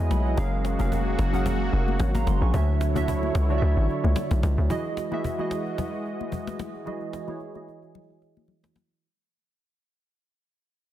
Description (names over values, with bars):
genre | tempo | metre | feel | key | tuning
amapiano | 111 BPM | 4/4 | swing 55% on 16ths | unclear | A4 = 438 Hz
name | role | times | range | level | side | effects
warm analog keys | accompaniment | 0.0-9.0 s | D3 to C#6 | -30 LUFS | right 2 dB | chorus, low-pass filter
warm analog pad | sustained chords | 0.0-9.0 s | D3 to D#5 | -33 LUFS | equal | chorus, low-pass filter
hollow log drum bass | bass | 0.0-4.7 s | E#1 to E2 | -23 LUFS | equal | none
cajon | drums | 0.1-9.0 s | none | -35 LUFS | equal | none
congas | percussion | 0.1-8.9 s | none | -36 LUFS | left 10 dB | none
room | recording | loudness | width
small room ambience | dense, heavily limited modern master | -23 LUFS | side -12 dB against mid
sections
0.0-4.7 A section; 4.7-9.0 B section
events
drop 0.0-4.7; synth keys fill 0.0-0.4; kick muted 3.6-4.7; fade-out 4.7-9.0; filter sweep 4.7-9.0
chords
0.4 F#maj9; 2.5 Dmaj9; 4.7 Emaj9